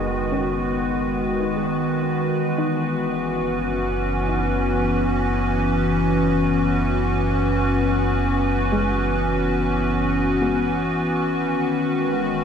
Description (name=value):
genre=ambient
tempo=free time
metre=none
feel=none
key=unclear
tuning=A4 = 438 Hz
part: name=evolving wavetable pad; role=sustained chords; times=0.0-12.4 s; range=D#3 to B4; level=-20 LUFS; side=left 1 dB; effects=chorus, built-in reverb
part: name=soft round pluck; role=arpeggios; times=0.0-12.4 s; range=G#3 to D#5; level=-30 LUFS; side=left 2 dB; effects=ensemble chorus, analog delay
part: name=deep rumbling drone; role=bass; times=0.0-12.4 s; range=F#1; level=-27 LUFS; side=right 1 dB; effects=built-in reverb, phaser
room=wet spring reverb, RT60 2.7 s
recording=echo-heavy mix, cassette tape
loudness=-19 LUFS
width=side -7 dB against mid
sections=0.0-12.4 A section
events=none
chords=0.0 G#m7/F#; 2.3 F#7sus4; 11.4 G#m7/F#